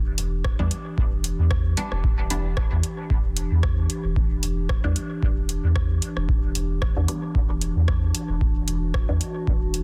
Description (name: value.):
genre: dub techno.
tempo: 113 BPM.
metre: 4/4.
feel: swing 55% on 16ths.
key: E minor.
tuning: A4 = 440 Hz.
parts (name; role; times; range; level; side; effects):
warbly tape-like pad; sustained chords; 0.0-9.8 s; E3 to G4; -34 LUFS; equal; chorus, built-in reverb, sidechain pumping.
soft dub sub bass; bass; 0.0-9.8 s; E1 to E2; -26 LUFS; equal; sidechain pumping.
booming analog drum machine; drums; 0.2-9.8 s; hi-hat, rim click; -35 LUFS; equal; soft clipping on snare, dub echo.
electronic kick drum; drums; 0.4-9.6 s; none; -26 LUFS; equal; none.
filtered dub chord stab; stabs; 0.6-9.2 s; E3 to D4; -37 LUFS; equal; phaser, sidechain pumping, dub echo.
room: digital ambience.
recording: dense, heavily limited modern master.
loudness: -24 LUFS.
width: mono.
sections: 0.0-9.8 A section.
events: filter sweep on synth stab 0.0-9.8.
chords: 0.0 Em7.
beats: 0.45 | 0.98 1.51 2.04 2.57 | 3.10 3.63 4.16 4.70 | 5.23 5.76 6.29 6.82 | 7.35 7.88 8.41 8.94 | 9.47.